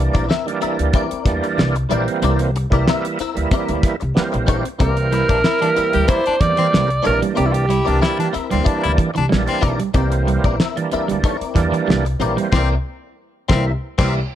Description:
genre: funk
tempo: 93 BPM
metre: 4/4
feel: straight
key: unclear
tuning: A4 = 440 Hz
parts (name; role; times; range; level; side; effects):
- overdriven tonewheel organ; stabs; 0.0-14.2 s; Eb3 to E4; -23 LUFS; right 5 dB; chorus vibrato, slow rotary speaker, plate reverb
- upright bass; bass; 0.0-14.2 s; Bb1 to E2; -21 LUFS; left 1 dB; none
- direct-recorded clean electric guitar; accompaniment; 0.1-14.2 s; C4 to E5; -25 LUFS; left 8 dB; ensemble chorus, plate reverb
- damped 70s drum kit; drums; 0.1-14.2 s; crash cymbal, hi-hat, kick drum, snare drum; -19 LUFS; equal; none
- clear alto saxophone; melody; 4.8-8.3 s; E4 to D5; -19 LUFS; right 2 dB; plate reverb
- clean electric guitar; riff; 4.8-12.5 s; E3 to C4; -23 LUFS; right 6 dB; none
- clear baritone saxophone; second line; 5.1-14.1 s; C4 to G4; -24 LUFS; left 7 dB; plate reverb
room: light reverb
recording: none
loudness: -16 LUFS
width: side -11 dB against mid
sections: 0.0-14.3 A section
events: break 0.0-4.8; band accent 12.5-14.3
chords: 0.0 C9

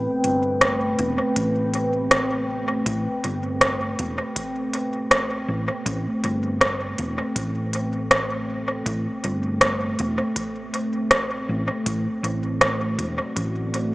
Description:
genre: ambient dub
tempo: 80 BPM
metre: 4/4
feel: swing 58% on 16ths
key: A dorian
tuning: A4 = 440 Hz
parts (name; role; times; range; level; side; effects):
- deep dark ambient pad; sustained chords; 0.0-13.9 s; A3 to G5; -26 LUFS; equal; chorus, built-in reverb
- hollow-body short-scale fingered electric bass; bass; 0.0-13.9 s; E1 to A1; -28 LUFS; equal; none
- organic electronic drum kit; drums; 0.2-13.9 s; hi-hat, rim click; -21 LUFS; equal; overdrive, dub echo
- electronic kick drum; drums; 0.6-13.5 s; none; -38 LUFS; equal; none
room: moderate huge ambient reverb, RT60 4.3 s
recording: small speaker sound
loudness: -21 LUFS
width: side -20 dB against mid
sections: 0.0-13.9 A section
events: none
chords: 0.0 Am9; 11.9 D

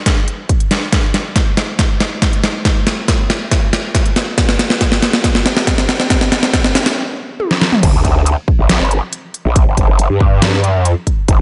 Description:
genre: heavy wobble dubstep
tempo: 139 BPM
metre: 4/4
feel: half-time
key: G minor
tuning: A4 = 441 Hz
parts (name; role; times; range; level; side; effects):
- dubstep drum kit; drums; 0.1-11.4 s; crash cymbal, hi-hat, snare drum, toms; -17 LUFS; equal; none
- electronic kick drum; drums; 0.1-11.4 s; none; -17 LUFS; equal; none
- growl bass; bass; 7.8-11.4 s; G1 to G2; -16 LUFS; equal; chorus, overdrive
room: moderate lush hall reverb, RT60 1.6 s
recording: dreamy mix soaked in reverb, nothing above 10.6 kHz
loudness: -14 LUFS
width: mono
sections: 0.0-7.8 A section; 7.8-11.4 B section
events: build-up 0.0-7.8; drum fill 0.0-7.0, 7.4-7.8; stop 7.0-7.8; drop 7.8-11.4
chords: none

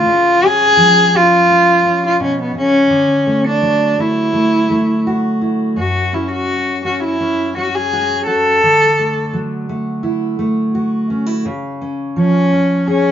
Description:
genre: acoustic folk-pop ballad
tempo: 84 BPM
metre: 4/4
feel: straight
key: unclear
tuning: A4 = 441 Hz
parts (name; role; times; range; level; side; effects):
- dark cello; melody; 0.0-13.1 s; B3 to A4; -12 LUFS; equal; none
- fingerpicked steel-string acoustic guitar; accompaniment; 0.0-13.1 s; F#2 to G#4; -18 LUFS; equal; none
room: moderate stone room reverb, RT60 1.0 s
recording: band playing live in one room, nothing above 7.5 kHz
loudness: -12 LUFS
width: side -9 dB against mid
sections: 0.0-13.1 A section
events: none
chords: 0.1 C#; 2.9 Dadd9; 5.8 F#5; 8.6 Dadd9; 11.5 C#

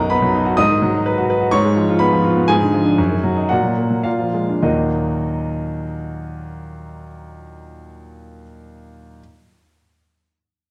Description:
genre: classical, virtuoso piano study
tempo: 98-128 BPM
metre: 2/4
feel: rubato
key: Eb minor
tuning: A4 = 440 Hz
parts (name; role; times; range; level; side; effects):
- warm grand piano; solo; 0.0-9.2 s; B1 to Eb6; -19 LUFS; equal; none
room: wet recital hall reverb, RT60 1.4 s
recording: dark, warm production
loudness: -18 LUFS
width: mono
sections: 0.0-4.6 A section; 4.6-7.0 B section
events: slowing down 2.0-4.6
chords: 0.0 Bmaj7; 0.6 Abm7; 1.5 Fdim/Ab; 2.5 Ddim/Ab; 3.0 Ebm/Gb; 3.5 Gb/Bb; 4.1 Bb7; 4.6 Ebm

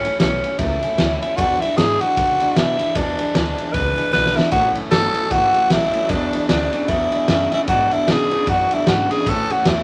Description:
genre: rockabilly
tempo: 152 BPM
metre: 4/4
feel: swing 60% on 8ths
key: unclear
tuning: A4 = 442 Hz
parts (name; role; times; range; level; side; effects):
- growling tenor saxophone; melody; 0.0-9.8 s; C#4 to B4; -21 LUFS; equal; none
- picked steel-string acoustic guitar; accompaniment; 0.0-9.8 s; E2 to E4; -29 LUFS; equal; none
- upright bass; bass; 0.0-9.8 s; G1 to C#3; -30 LUFS; equal; none
- raw garage drum kit; drums; 0.0-9.8 s; kick drum, ride cymbal, snare drum; -24 LUFS; equal; none
- electric guitar through a small old amp; riff; 4.5-9.8 s; E2 to F#3; -29 LUFS; equal; spring reverb
room: moderate club reverb, RT60 0.8 s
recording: none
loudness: -18 LUFS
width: mono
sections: 0.0-9.8 A section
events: drum fill 4.1-4.5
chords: 0.0 A; 1.4 E7; 4.5 A; 6.1 E7; 9.3 A

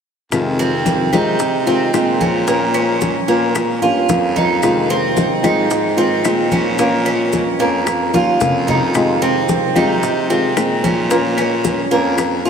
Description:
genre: latin, Cuban son and guajira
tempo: 111 BPM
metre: 4/4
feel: straight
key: F minor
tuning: A4 = 443 Hz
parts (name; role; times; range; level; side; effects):
- flamenco guitar; accompaniment; 0.3-12.5 s; C3 to F4; -18 LUFS; left 3 dB; none
- breathy baritone saxophone; bass; 0.3-12.5 s; Eb2 to C3; -21 LUFS; equal; none
- bongos; percussion; 0.3-12.5 s; none; -28 LUFS; left 6 dB; none
- claves; percussion; 0.3-12.4 s; none; -33 LUFS; left 6 dB; none
- congas; percussion; 0.3-12.5 s; none; -24 LUFS; left 1 dB; none
- maracas; percussion; 0.3-12.5 s; none; -34 LUFS; right 5 dB; none
- Cuban tres; arpeggios; 0.6-12.5 s; Bb3 to F4; -18 LUFS; right 4 dB; analog delay
room: wet huge ambient reverb, RT60 6.5 s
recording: dreamy mix soaked in reverb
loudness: -13 LUFS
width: side -7 dB against mid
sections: 0.3-12.5 A section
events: drum fill 8.1-8.9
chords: 0.3 Fm7; 2.5 Bbm; 4.6 Fm7; 6.8 Bbm; 8.9 Fm7; 11.1 Bbm

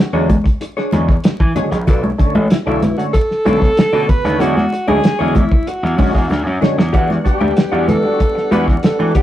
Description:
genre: funk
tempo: 95 BPM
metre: 4/4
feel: straight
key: unclear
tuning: A4 = 440 Hz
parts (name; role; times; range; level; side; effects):
- breathy alto saxophone; melody; 0.0-9.2 s; E4 to B4; -19 LUFS; equal; none
- vintage hollow-body jazz guitar; accompaniment; 0.1-9.2 s; D4 to G5; -24 LUFS; left 2 dB; none
- overdriven tonewheel organ; stabs; 0.1-9.2 s; B2 to F#4; -21 LUFS; right 1 dB; slow rotary speaker
- gritty slap bass; bass; 0.1-9.1 s; A1 to E3; -19 LUFS; equal; overdrive
- cloth-damped thuddy drum kit; drums; 0.3-9.2 s; hi-hat, kick drum, snare drum; -14 LUFS; equal; none
- congas; percussion; 0.3-9.2 s; none; -20 LUFS; equal; none
- overdriven tonewheel organ; sustained chords; 6.9-9.2 s; G3 to F#5; -25 LUFS; left 1 dB; slow rotary speaker, chorus vibrato
room: moderate studio reverb, RT60 0.6 s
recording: rough rehearsal-room recording, warm saturation, vinyl crackle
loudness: -12 LUFS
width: side -12 dB against mid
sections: 0.0-6.9 A section; 6.9-9.2 B section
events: drum fill 6.3-6.9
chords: 0.0 E13; 1.9 Bm7; 4.4 E13; 6.9 Em9

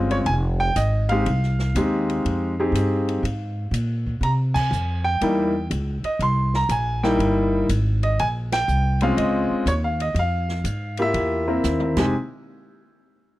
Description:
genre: jazz piano trio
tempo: 121 BPM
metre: 4/4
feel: swing 67% on 8ths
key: F minor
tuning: A4 = 440 Hz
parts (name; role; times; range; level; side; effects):
- clear concert grand piano; melody; 0.0-12.1 s; G3 to C6; -22 LUFS; equal; none
- upright bass; bass; 0.0-12.1 s; F1 to C3; -23 LUFS; equal; none
- open jazz drum kit; drums; 0.1-12.1 s; crash cymbal, hi-hat, kick drum, ride cymbal, snare drum, toms; -34 LUFS; equal; none
room: studio reverb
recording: dry, close 1970s-style studio recording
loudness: -20 LUFS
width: side -16 dB against mid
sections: 0.0-12.1 A section; 12.1-13.4 B section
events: band accent 4.5, 8.4; drum fill 11.6-12.1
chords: 0.3 Fm7; 4.2 C7#9; 8.2 Bbm7; 10.2 Fm; 11.2 C7#9; 11.9 Fm7; 12.1 N.C.

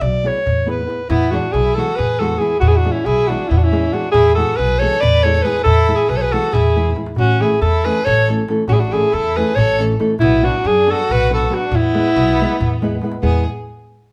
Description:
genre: balkan folk, Balkan wedding band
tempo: 277 BPM (eighths)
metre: 7/8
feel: straight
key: E mixolydian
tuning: A4 = 440 Hz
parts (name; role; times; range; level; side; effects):
- warm alto saxophone; melody; 0.0-13.4 s; B3 to D5; -19 LUFS; equal; none
- upright bass; bass; 0.0-13.5 s; A1 to F#2; -22 LUFS; equal; none
- darbuka; percussion; 0.0-13.4 s; none; -24 LUFS; equal; none
- nylon-string guitar; accompaniment; 0.2-13.4 s; E3 to B4; -25 LUFS; equal; none
- clear violin; second line; 1.1-13.5 s; B3 to B4; -27 LUFS; equal; none
room: moderate large studio reverb, RT60 0.9 s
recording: band playing live in one room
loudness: -16 LUFS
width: mono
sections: 0.0-1.1 A section; 1.1-13.2 B section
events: alto saxophone solo 0.0-1.1; drum fill 6.6-7.2, 12.9-13.2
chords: 0.0 E; 7.2 A; 10.2 Bm; 11.7 E

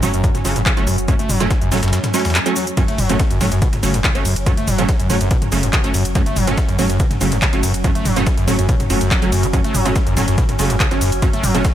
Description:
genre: driving peak-time techno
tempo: 142 BPM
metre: 4/4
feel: straight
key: F# minor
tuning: A4 = 440 Hz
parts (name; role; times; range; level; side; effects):
- screaming distorted acid line; riff; 0.0-11.6 s; E2 to A3; -21 LUFS; equal; distortion, lush chorus, sidechain pumping, tape echo
- rave stab; stabs; 0.0-11.6 s; F#3 to C#4; -22 LUFS; right 3 dB; chorus, built-in reverb, cassette tape, sidechain pumping, tape echo
- saturated sub bass; bass; 0.0-11.6 s; F#1; -24 LUFS; equal; sidechain pumping, low-pass filter
- deep dark ambient pad; drone; 0.0-11.7 s; F#3 to C#4; -26 LUFS; right 1 dB; chorus, built-in reverb, sidechain pumping
- breakbeat sampler-style drum kit; drums; 0.0-11.7 s; hi-hat, snare drum; -33 LUFS; left 1 dB; none
- techno drum kit; drums; 0.0-11.7 s; handclaps, hi-hat, ride cymbal, shaker, toms; -22 LUFS; equal; sidechain pumping on hats, studio ambience, sidechain pumping on perc, sidechain pumping on toms, sidechain pumping on cymbals
- electronic kick drum; drums; 0.2-11.7 s; none; -19 LUFS; equal; studio ambience
room: digital ambience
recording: none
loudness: -14 LUFS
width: side -11 dB against mid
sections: 0.0-11.7 A section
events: none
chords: 0.0 F#m

